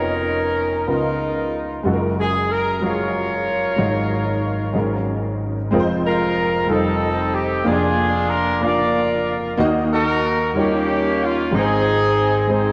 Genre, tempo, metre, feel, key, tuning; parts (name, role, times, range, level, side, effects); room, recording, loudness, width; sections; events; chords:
gospel; 62 BPM (dotted quarters); 6/8; straight; A4 = 440 Hz
warm horn section; melody; 0.0-12.7 s; Bb3 to D5; -22 LUFS; equal; diffuse ambient delay
warm baby grand piano; accompaniment; 0.0-12.7 s; F1 to F5; -23 LUFS; equal; ensemble chorus
wet lush hall reverb, RT60 2.4 s; dreamy mix soaked in reverb; -20 LUFS; mono
0.0-5.7 A section; 5.7-12.7 B section
0.0 Db13/F; 0.9 Db13; 1.8 Gbmaj9; 3.8 Ab7sus4; 4.8 Ab9sus4; 5.7 Fm; 6.7 F9; 7.7 Bb/F; 9.6 Ebm; 10.6 Eb9; 11.5 Ab